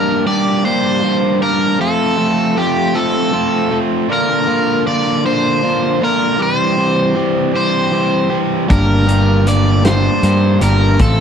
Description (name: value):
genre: indie rock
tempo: 52 BPM (dotted quarters)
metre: 6/8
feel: straight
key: G dorian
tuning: A4 = 439 Hz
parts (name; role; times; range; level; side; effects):
- cranked stack guitar; melody; 0.0-11.2 s; G4 to D5; -17 LUFS; equal; overdrive
- crunchy overdriven guitar; riff; 0.0-11.2 s; D3 to G4; -15 LUFS; right 1 dB; none
- fuzz picked electric bass; bass; 8.7-11.2 s; G1 to G2; -13 LUFS; equal; overdrive
- loose indie drum kit; drums; 8.7-11.2 s; hi-hat, kick drum, snare drum; -17 LUFS; equal; none
room: little or no reverb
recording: dry, close 1970s-style studio recording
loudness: -12 LUFS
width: side -7 dB against mid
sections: 0.0-11.2 A section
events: none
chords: 0.0 Gm; 1.8 F; 4.1 Bb; 6.4 C; 8.7 Gm